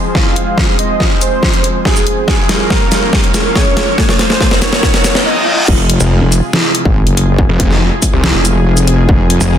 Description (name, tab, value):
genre	heavy wobble dubstep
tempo	141 BPM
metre	4/4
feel	half-time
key	F minor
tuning	A4 = 441 Hz
part	lush unison pad	sustained chords	0.0-9.6 s	C3 to F5	-20 LUFS	equal	chorus, sidechain pumping
part	riser and reverse cymbal	sound effects	3.4-5.7 s	none	-21 LUFS	left 1 dB	none
part	soft supersaw	melody	0.1-5.6 s	Ab4 to F5	-18 LUFS	right 2 dB	low-pass filter, tape echo
part	dubstep drum kit	drums	0.1-9.5 s	crash cymbal, hi-hat, shaker, snare drum	-14 LUFS	equal	none
part	electronic kick drum	drums	0.1-9.2 s	none	-14 LUFS	equal	distortion
part	wobble bass	bass	5.7-9.4 s	F1 to Ab1	-11 LUFS	equal	chorus, overdrive
part	snarling distorted saw bass	bass	6.0-9.6 s	F1 to C2	-12 LUFS	equal	overdrive
room	light reverb, digital ambience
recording	dense, heavily limited modern master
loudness	-9 LUFS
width	side -9 dB against mid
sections	0.0-5.7 A section; 5.7-9.6 B section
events	build-up 0.0-5.7; drum fill 0.0-5.3; filter sweep on supersaw synth 0.0-5.7; reverse cymbal 4.8-5.7; drop 5.7-9.6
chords	0.0 Fm; 2.3 Bbm; 5.7 Fm